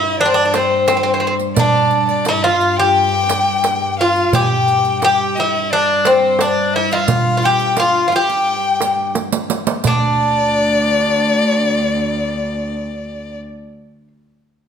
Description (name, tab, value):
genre	Turkish makam ensemble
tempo	87 BPM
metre	4/4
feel	straight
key	G makam hicaz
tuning	A4 = 440 Hz
part	Greek bouzouki	melody	0.0-14.1 s	C4 to G4	-15 LUFS	equal	none
part	bright violin	second line	0.0-13.4 s	C5 to Ab5	-19 LUFS	left 4 dB	slapback echo
part	rich chamber cello section	drone	0.0-13.4 s	D2 to G2	-24 LUFS	right 1 dB	none
part	darbuka	percussion	0.0-10.2 s	none	-21 LUFS	right 2 dB	none
part	riq	percussion	0.5-10.2 s	none	-23 LUFS	right 8 dB	none
room	moderate recital hall reverb, RT60 1.3 s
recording	none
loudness	-13 LUFS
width	side -7 dB against mid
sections	0.0-9.8 A section; 9.8-12.6 B section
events	drum fill 9.2-9.8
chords	none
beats	0.19 0.88 | 1.57 2.26 2.95 3.64 | 4.33 5.02 5.71 6.40 | 7.09 7.78 8.47 9.16 | 9.85 10.54 11.22 11.91